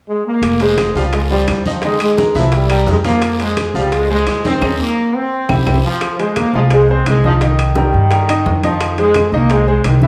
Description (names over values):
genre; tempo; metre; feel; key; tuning
latin, salsa; 172 BPM; 4/4; straight; F minor; A4 = 441 Hz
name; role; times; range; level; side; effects
brilliant trombone section; melody; 0.1-10.1 s; Eb3 to C4; -19 LUFS; equal; none
upright bass; bass; 0.4-10.1 s; F1 to G2; -18 LUFS; equal; none
bongos; percussion; 0.4-10.0 s; none; -29 LUFS; equal; none
claves; percussion; 0.4-10.0 s; none; -33 LUFS; equal; none
congas; percussion; 0.4-10.1 s; none; -28 LUFS; equal; none
guiro; percussion; 0.4-5.7 s; none; -33 LUFS; equal; none
timbales; percussion; 0.4-10.0 s; none; -29 LUFS; equal; none
bright baby grand piano; accompaniment; 0.6-10.1 s; Eb3 to F5; -21 LUFS; equal; none
room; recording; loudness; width
moderate large studio reverb, RT60 1.3 s; studio reverb; -14 LUFS; mono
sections
0.4-6.0 A section; 6.0-10.1 B section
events
band accent 4.6-6.0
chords
0.4 Fm; 1.1 Dbmaj7; 1.8 Ebsus4; 2.5 C7; 3.2 Fm; 3.9 Dbmaj7; 4.6 Eb7sus4; 5.3 C; 6.0 Fm; 7.4 Cm7; 8.8 Fm7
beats
0.07 | 0.42 0.77 1.12 1.47 | 1.82 2.17 2.52 2.87 | 3.22 3.57 3.92 4.27 | 4.62 4.97 5.32 5.67 | 6.01 6.36 6.71 7.06 | 7.41 7.76 8.11 8.46 | 8.80 9.15 9.50 9.85